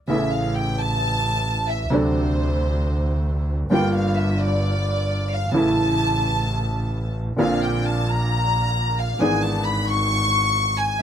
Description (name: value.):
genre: tango.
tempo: free time.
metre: none.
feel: none.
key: unclear.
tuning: A4 = 440 Hz.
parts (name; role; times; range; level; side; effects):
warm studio violin section; second line; 0.1-11.0 s; C5 to C#6; -24 LUFS; left 1 dB; none.
clear upright piano; accompaniment; 0.1-10.9 s; G1 to G#4; -24 LUFS; right 1 dB; none.
clear double bass; bass; 0.1-10.9 s; G1 to D2; -24 LUFS; equal; none.
room: little or no reverb.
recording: close, detailed microphones, faint mains hum.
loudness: -19 LUFS.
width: side -9 dB against mid.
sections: 0.1-11.0 A section.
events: violin section solo 0.1-11.0.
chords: 0.1 A; 1.9 D7; 3.7 Gm7; 5.5 A; 7.4 Bbadd9; 9.2 E7/G#.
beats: free time.